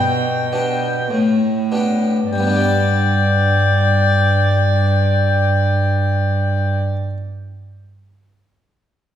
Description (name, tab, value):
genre	classical, baroque-style sonata movement with continuo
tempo	49 BPM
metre	3/4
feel	straight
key	G major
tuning	A4 = 441 Hz
part	clear oboe	melody	0.0-6.8 s	G5	-21 LUFS	left 5 dB	none
part	rich violin	second line	0.0-6.8 s	D5 to G5	-22 LUFS	left 3 dB	none
part	harpsichord	accompaniment	0.0-7.2 s	A2 to D5	-22 LUFS	left 1 dB	none
part	rich cello	bass	0.0-6.8 s	G2 to B2	-17 LUFS	right 2 dB	none
room	wet scoring stage reverb, RT60 1.5 s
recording	recorded in a church or concert hall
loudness	-14 LUFS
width	side -10 dB against mid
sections	0.0-2.3 A section; 2.3-6.0 B section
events	slowing down 0.0-2.3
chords	0.0 G